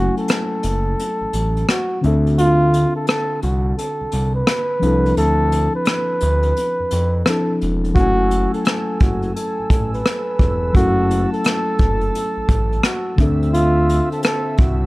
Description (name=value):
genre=lo-fi hip hop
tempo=86 BPM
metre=4/4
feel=swing 64% on 16ths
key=unclear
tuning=A4 = 440 Hz
part: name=breathy flugelhorn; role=melody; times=0.0-14.9 s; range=F4 to B4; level=-21 LUFS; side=right 1 dB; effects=none
part: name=reed electric piano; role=accompaniment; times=0.0-14.9 s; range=D3 to G#5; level=-23 LUFS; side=left 2 dB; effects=cassette tape
part: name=smooth synth bass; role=bass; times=0.0-14.9 s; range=E1 to F2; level=-19 LUFS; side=equal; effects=none
part: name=vintage brush drum kit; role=drums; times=0.2-14.8 s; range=hi-hat, kick drum, rim click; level=-19 LUFS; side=equal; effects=none
part: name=warm analog pad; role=sustained chords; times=8.0-14.9 s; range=C4 to E6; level=-30 LUFS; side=equal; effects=chorus
room=light reverb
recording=none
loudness=-16 LUFS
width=side -20 dB against mid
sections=0.0-14.9 A section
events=break 0.0-8.0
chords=0.0 F#m9; 2.0 Dm9; 8.0 F#m9; 13.2 Dm9